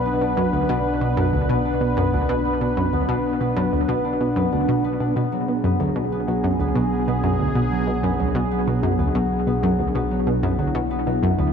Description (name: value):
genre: ambient, sequencer-driven space music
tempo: 94 BPM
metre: 4/4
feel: straight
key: B dorian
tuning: A4 = 439 Hz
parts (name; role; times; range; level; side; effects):
- sweeping resonant pad; sustained chords; 0.0-11.5 s; B3 to B4; -24 LUFS; equal; chorus
- concert harp; arpeggios; 0.0-11.5 s; F#3 to D4; -27 LUFS; moving between left 7 dB and right 7 dB; auto-pan, analog delay
- analog drone; bass; 0.0-11.5 s; B1; -30 LUFS; equal; chorus, phaser
- analog pluck; riff; 0.2-11.5 s; D2 to B2; -22 LUFS; equal; chorus, analog delay
room: wet huge ambient reverb, RT60 9.0 s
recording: none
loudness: -19 LUFS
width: side -7 dB against mid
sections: 0.0-11.5 A section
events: none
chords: 0.0 Bm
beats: | 0.06 0.69 1.33 1.97 | 2.61 3.25 3.89 4.52 | 5.16 5.80 6.44 7.08 | 7.72 8.35 8.99 9.63 | 10.27 10.91